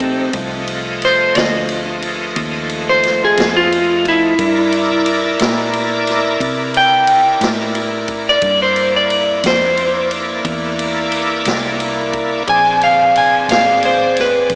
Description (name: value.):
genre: slow blues.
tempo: 59 BPM (dotted quarters).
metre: 12/8.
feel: straight.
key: unclear.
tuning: A4 = 438 Hz.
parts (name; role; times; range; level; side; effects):
electric guitar at the edge of break-up; melody; 0.0-14.5 s; C4 to Ab5; -12 LUFS; equal; wide subtle chorus.
bright tonewheel organ; sustained chords; 0.0-14.6 s; F3 to Eb5; -19 LUFS; equal; overdrive, chorus vibrato, slow rotary speaker.
vintage muted fingered electric bass; bass; 0.0-14.6 s; Ab1 to C3; -27 LUFS; equal; none.
vintage drum kit; drums; 0.0-14.6 s; kick drum, ride cymbal, snare drum; -21 LUFS; equal; none.
room: wet lush hall reverb, RT60 1.7 s, studio ambience.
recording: dreamy mix soaked in reverb, small speaker sound.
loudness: -12 LUFS.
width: side -32 dB against mid.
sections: 0.0-14.6 A section.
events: clean electric guitar solo 0.0-14.6.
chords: 0.0 F9; 4.4 C9; 12.5 Bb9.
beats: | 0.34 1.35 2.36 3.37 | 4.38 5.39 6.41 7.42 | 8.43 9.44 10.45 11.46 | 12.47 13.49 14.50.